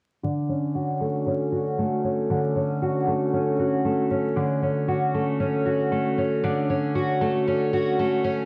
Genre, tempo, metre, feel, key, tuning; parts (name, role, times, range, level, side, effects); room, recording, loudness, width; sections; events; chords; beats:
folktronica; 116 BPM; 4/4; straight; D major; A4 = 440 Hz
picked twelve-string acoustic guitar; arpeggios; 0.2-8.5 s; D3 to F#4; -24 LUFS; equal; low-pass filter, digital delay
moderate plate reverb, RT60 3.5 s; vinyl crackle; -24 LUFS; mono
0.2-8.5 A section
filter sweep on twelve-string acoustic guitar 0.2-8.5
0.2 Dmaj7
| 0.23 0.75 1.27 1.79 | 2.30 2.82 3.34 3.85 | 4.37 4.89 5.41 5.92 | 6.44 6.96 7.48 7.99